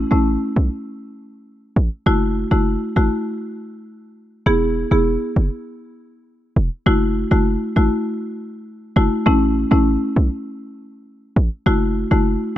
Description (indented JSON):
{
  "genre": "dancehall",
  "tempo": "100 BPM",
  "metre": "4/4",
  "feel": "straight",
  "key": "F# minor",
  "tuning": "A4 = 436 Hz",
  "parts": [
    { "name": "short 808-style bass", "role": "bass", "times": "0.0-12.4 s", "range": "E1 to B1", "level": "-18 LUFS", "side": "equal", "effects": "none" },
    { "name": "marimba with medium mallets", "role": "accompaniment", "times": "0.1-12.3 s", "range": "A3 to G#4", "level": "-20 LUFS", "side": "left 1 dB", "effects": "none" }
  ],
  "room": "light reverb, small room ambience",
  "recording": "none",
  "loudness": "-16 LUFS",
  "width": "side -12 dB against mid",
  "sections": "0.0-4.5 A section; 4.5-12.6 B section",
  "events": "stop 3.9-4.5",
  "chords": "0.0 A; 2.1 F#m7; 4.5 E; 6.9 F#m7; 9.3 A; 11.7 F#m7"
}